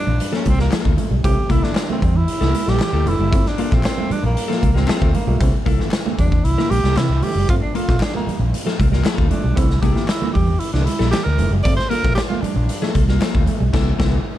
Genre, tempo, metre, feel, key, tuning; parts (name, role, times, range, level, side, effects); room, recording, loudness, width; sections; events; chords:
funk; 115 BPM; 4/4; straight; G dorian; A4 = 443 Hz
warm tenor saxophone; melody; 0.0-12.9 s; Bb3 to D5; -24 LUFS; right 2 dB
electric guitar at the edge of break-up; riff; 0.0-13.7 s; E3 to C4; -28 LUFS; right 6 dB
warm upright piano; stabs; 0.1-14.2 s; G2 to A3; -29 LUFS; right 1 dB; tape echo
vintage muted fingered electric bass; bass; 0.1-14.2 s; F1 to C3; -19 LUFS; equal
congas; percussion; 0.1-13.6 s; -29 LUFS; right 7 dB
raw garage drum kit; drums; 0.2-14.1 s; crash cymbal, hi-hat, kick drum, snare drum; -20 LUFS; equal
clean electric guitar; accompaniment; 0.3-14.2 s; Bb3 to Bb4; -26 LUFS; left 10 dB
group handclap; percussion; 0.7-13.3 s; -36 LUFS; left 4 dB
small room ambience; dark, warm production; -16 LUFS; side -13 dB against mid
0.0-14.4 A section
tenor saxophone solo 0.0-14.4; band accent 13.7-14.4
0.0 Gm9; 1.2 C13; 3.3 Gm9; 5.4 C13; 7.5 Gm9; 9.6 C13; 11.7 Gm9; 13.7 C13